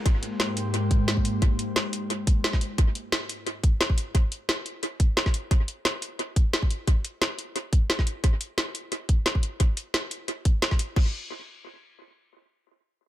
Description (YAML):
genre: liquid drum and bass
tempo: 176 BPM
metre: 4/4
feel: swing 54% on 16ths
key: Ab major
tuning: A4 = 440 Hz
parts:
  - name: lush unison pad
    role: sustained chords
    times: 0.0-2.8 s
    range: Ab2 to C5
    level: -29 LUFS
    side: left 1 dB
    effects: chorus
  - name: drum and bass drum kit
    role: drums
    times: 0.1-11.0 s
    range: crash cymbal, hi-hat, snare drum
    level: -28 LUFS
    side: equal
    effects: analog delay
  - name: electronic kick drum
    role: drums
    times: 0.1-11.0 s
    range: none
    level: -22 LUFS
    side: equal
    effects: none
room: little or no reverb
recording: echo-heavy mix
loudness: -23 LUFS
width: side -14 dB against mid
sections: 0.0-11.0 A section; 11.0-13.1 B section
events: none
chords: 0.1 Abmaj9; 4.1 N.C.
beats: | 0.06 0.40 0.74 1.08 | 1.42 1.76 2.10 2.44 | 2.78 3.12 3.46 3.81 | 4.15 4.49 4.83 5.17 | 5.51 5.85 6.19 6.53 | 6.87 7.21 7.55 7.90 | 8.24 8.58 8.92 9.26 | 9.60 9.94 10.28 10.62 | 10.96